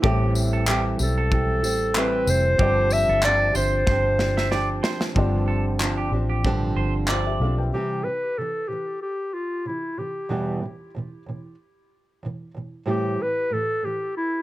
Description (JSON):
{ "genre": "acoustic pop", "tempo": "93 BPM", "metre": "4/4", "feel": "swing 55% on 16ths", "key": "C major", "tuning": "A4 = 440 Hz", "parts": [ { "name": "felt-muted upright piano", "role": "accompaniment", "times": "0.0-7.9 s", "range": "C4 to G5", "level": "-32 LUFS", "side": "left 6 dB", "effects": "none" }, { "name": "nylon-string guitar", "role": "accompaniment", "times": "0.0-14.1 s", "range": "E2 to G4", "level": "-28 LUFS", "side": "right 3 dB", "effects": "none" }, { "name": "clean electric guitar", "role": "arpeggios", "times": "0.0-7.5 s", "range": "C4 to E5", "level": "-30 LUFS", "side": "right 4 dB", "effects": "none" }, { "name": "vintage muted fingered electric bass", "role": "bass", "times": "0.0-7.7 s", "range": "F1 to B1", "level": "-24 LUFS", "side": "equal", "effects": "none" }, { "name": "modern studio drum kit", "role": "drums", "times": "0.0-7.2 s", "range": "handclaps, kick drum, snare drum, tambourine", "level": "-26 LUFS", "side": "equal", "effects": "none" }, { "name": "warm clarinet", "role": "melody", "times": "1.0-14.4 s", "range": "E4 to E5", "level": "-24 LUFS", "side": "equal", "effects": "tape echo" } ], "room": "moderate studio reverb, RT60 0.6 s", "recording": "none", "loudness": "-20 LUFS", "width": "side -16 dB against mid", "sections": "0.0-5.2 A section; 5.2-7.7 B section; 7.7-14.4 C section", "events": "drum fill 3.9-5.2", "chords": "0.0 Am7; 2.6 G7sus4; 7.7 C; 10.3 Em; 12.9 Am7", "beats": "| 0.03 0.67 1.31 1.96 | 2.60 3.24 3.88 4.52 | 5.16 5.80 6.45 7.09 | 7.73 8.37 9.02 9.66 | 10.30 10.95 11.59 12.24 | 12.88 13.52 14.17" }